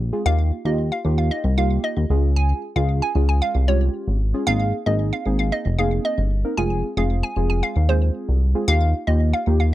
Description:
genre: dance-pop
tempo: 114 BPM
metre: 4/4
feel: straight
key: Ab major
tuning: A4 = 439 Hz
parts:
  - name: chorused synth bass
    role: bass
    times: 0.0-9.7 s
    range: F1 to Eb2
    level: -19 LUFS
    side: equal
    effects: none
  - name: deep mellow chord stab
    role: accompaniment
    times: 0.1-9.7 s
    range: Ab3 to Bb4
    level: -26 LUFS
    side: right 1 dB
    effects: chorus
  - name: hollow square pluck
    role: melody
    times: 0.3-9.7 s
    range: C5 to Ab5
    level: -26 LUFS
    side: right 1 dB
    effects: chorus, slapback echo
room: little or no reverb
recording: dry, close 1970s-style studio recording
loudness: -18 LUFS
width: side -15 dB against mid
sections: 0.0-9.7 A section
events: none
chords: 0.3 Ebadd9; 2.1 Db; 4.5 Abadd9; 6.6 Fm; 8.7 Ebadd9

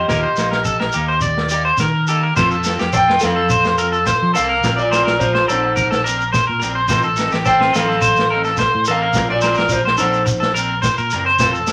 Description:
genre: highlife guitar band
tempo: 106 BPM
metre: 4/4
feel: straight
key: F mixolydian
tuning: A4 = 442 Hz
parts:
  - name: electric guitar at the edge of break-up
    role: melody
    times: 0.0-10.5 s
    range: Eb4 to G5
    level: -21 LUFS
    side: equal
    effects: none
  - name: electric guitar at the edge of break-up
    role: arpeggios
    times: 0.0-11.7 s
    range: F4 to D5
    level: -20 LUFS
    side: equal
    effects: vibrato effect
  - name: fingered electric bass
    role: bass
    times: 0.0-11.7 s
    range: F1 to F3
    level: -26 LUFS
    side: equal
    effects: none
  - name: clean electric guitar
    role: accompaniment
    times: 0.1-11.7 s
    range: F3 to Bb4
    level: -29 LUFS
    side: equal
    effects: spring reverb
  - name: vintage drum kit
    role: drums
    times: 0.1-11.7 s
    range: crash cymbal, kick drum, snare drum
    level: -27 LUFS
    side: equal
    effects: none
  - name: shekere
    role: percussion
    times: 0.1-11.7 s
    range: none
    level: -27 LUFS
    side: equal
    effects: none
room: moderate studio reverb, RT60 0.6 s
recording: none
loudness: -16 LUFS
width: mono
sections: 0.0-2.4 A section; 2.4-11.7 B section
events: none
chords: 0.1 Eb; 2.4 F; 4.6 Bbadd9; 6.9 F7/A; 9.2 Bbadd9

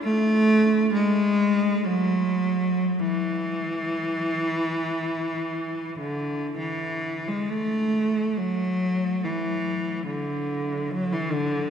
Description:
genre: classical, free, expressive piece for unaccompanied cello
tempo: 39-74 BPM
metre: 3/4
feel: rubato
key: unclear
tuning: A4 = 436 Hz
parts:
  - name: clear cello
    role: solo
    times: 0.0-11.7 s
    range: D3 to A3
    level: -22 LUFS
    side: equal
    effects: none
room: wet cathedral reverb, RT60 5.9 s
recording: none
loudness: -22 LUFS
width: side -8 dB against mid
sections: 0.0-6.6 A section; 6.6-11.7 B section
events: none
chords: none

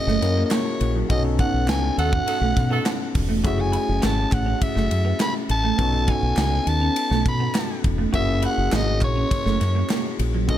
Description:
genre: polished 1980s jazz-funk pop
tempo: 102 BPM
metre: 4/4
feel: straight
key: F# dorian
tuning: A4 = 437 Hz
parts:
  - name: raspy soprano saxophone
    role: melody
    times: 0.0-10.6 s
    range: C#5 to B5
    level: -26 LUFS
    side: right 1 dB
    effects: none
  - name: overdriven tine electric piano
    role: accompaniment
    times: 0.0-10.6 s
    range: A3 to A#4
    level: -27 LUFS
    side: left 3 dB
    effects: analog chorus
  - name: semi-hollow electric guitar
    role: riff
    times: 0.1-10.6 s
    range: F#3 to F#4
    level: -29 LUFS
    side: right 6 dB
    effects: ensemble chorus
  - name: deep dub fingered electric bass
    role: bass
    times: 0.1-10.6 s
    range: E1 to B2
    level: -23 LUFS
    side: equal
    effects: none
  - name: modern studio drum kit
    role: drums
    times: 0.1-10.6 s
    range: hi-hat, kick drum, ride cymbal, snare drum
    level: -26 LUFS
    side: equal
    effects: gated reverb
  - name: group handclap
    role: percussion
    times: 0.5-10.0 s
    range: none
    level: -38 LUFS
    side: right 2 dB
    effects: none
  - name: mellow horn section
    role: second line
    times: 2.0-2.9 s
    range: A3 to A4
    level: -30 LUFS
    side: right 3 dB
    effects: none
room: small room ambience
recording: none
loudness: -19 LUFS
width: side -12 dB against mid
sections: 0.0-10.6 A section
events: band accent 1.1-3.4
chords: 0.0 F#7; 1.1 B7; 3.4 F#m7; 5.8 B7; 8.1 F#7

